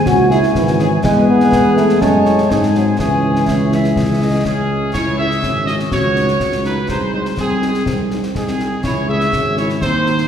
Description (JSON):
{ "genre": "military-style march for wind band", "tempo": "123 BPM", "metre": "2/4", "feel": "straight", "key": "C# minor", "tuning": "A4 = 438 Hz", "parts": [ { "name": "dark woodwind section", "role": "second line", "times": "0.0-10.3 s", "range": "B#3 to A5", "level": "-23 LUFS", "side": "left 2 dB", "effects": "none" }, { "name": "mellow euphonium", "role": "second line", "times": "0.0-10.3 s", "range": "E3 to G#4", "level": "-19 LUFS", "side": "right 1 dB", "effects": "none" }, { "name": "mellow tuba", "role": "bass", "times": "0.1-10.2 s", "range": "G#1 to G#2", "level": "-18 LUFS", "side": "right 1 dB", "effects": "none" }, { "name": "concert snare drum, concert bass drum and clash cymbals", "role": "drums", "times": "0.1-10.3 s", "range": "none", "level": "-24 LUFS", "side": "left 1 dB", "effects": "none" }, { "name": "bright trumpet section", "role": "melody", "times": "0.3-10.3 s", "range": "G#4 to E5", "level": "-21 LUFS", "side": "equal", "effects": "none" }, { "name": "mellow French horn section", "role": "accompaniment", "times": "0.3-10.2 s", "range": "E3 to G#4", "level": "-21 LUFS", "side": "left 3 dB", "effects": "none" } ], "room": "wet concert hall reverb, RT60 2.3 s", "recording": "recorded in a church or concert hall", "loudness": "-13 LUFS", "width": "side -8 dB against mid", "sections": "0.0-4.9 A section; 4.9-10.3 A section", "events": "none", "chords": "0.1 C#m; 1.0 E; 2.0 F#m; 2.5 G#7; 3.0 C#m; 5.9 D#m7b5/C#; 6.9 G#7/B#; 8.8 C#m" }